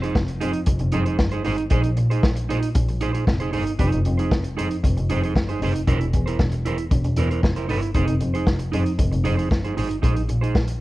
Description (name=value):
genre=disco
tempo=116 BPM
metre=4/4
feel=straight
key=unclear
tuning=A4 = 440 Hz
part: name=electric guitar at the edge of break-up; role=accompaniment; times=0.0-10.7 s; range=Eb4 to C5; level=-27 LUFS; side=right 5 dB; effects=none
part: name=muted double bass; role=bass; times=0.0-10.7 s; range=E1 to Bb2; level=-22 LUFS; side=equal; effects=none
part: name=vintage drum kit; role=drums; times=0.0-10.8 s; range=hi-hat, kick drum, snare drum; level=-22 LUFS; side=equal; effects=none
room=little or no reverb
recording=dark, warm production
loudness=-19 LUFS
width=side -17 dB against mid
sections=0.0-10.8 A section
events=none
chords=0.0 Fm7; 1.7 Bb9sus4; 3.8 Fm7; 5.9 C7/E; 7.9 Fm7; 10.0 Bb9sus4